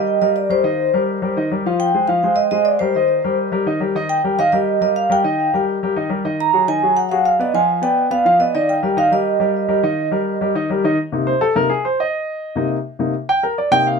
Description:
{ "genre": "jazz", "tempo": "209 BPM", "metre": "4/4", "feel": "straight", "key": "C minor", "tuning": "A4 = 440 Hz", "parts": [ { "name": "vibraphone with medium mallets", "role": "melody", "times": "0.0-10.7 s", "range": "C5 to Bb5", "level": "-17 LUFS", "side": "right 2 dB", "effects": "tape echo" }, { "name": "warm grand piano", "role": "accompaniment", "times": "0.0-14.0 s", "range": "C3 to G5", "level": "-19 LUFS", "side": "left 2 dB", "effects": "none" } ], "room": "light reverb", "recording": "close, detailed microphones", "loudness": "-15 LUFS", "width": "side -5 dB against mid", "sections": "0.0-11.0 A section; 11.0-14.0 B section", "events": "grand piano solo 11.0-14.0", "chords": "0.0 Cm7; 1.8 Fm; 2.9 Cm7 (rootless); 6.4 Ab5; 7.5 G7b9; 8.7 Eb; 11.0 Cm7" }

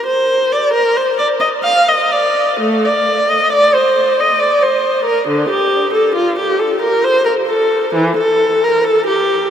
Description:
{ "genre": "classical, baroque-style suite movement for unaccompanied viola", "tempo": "62-69 BPM", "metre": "3/4", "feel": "rubato", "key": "unclear", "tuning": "A4 = 441 Hz", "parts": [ { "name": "warm viola", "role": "solo", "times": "0.0-9.5 s", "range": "D3 to F5", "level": "-12 LUFS", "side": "equal", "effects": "none" } ], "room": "wet huge ambient reverb, RT60 8.3 s", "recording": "in a vast, echoing space", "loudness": "-12 LUFS", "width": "side -9 dB against mid", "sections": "0.0-9.5 A section", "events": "none", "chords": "none" }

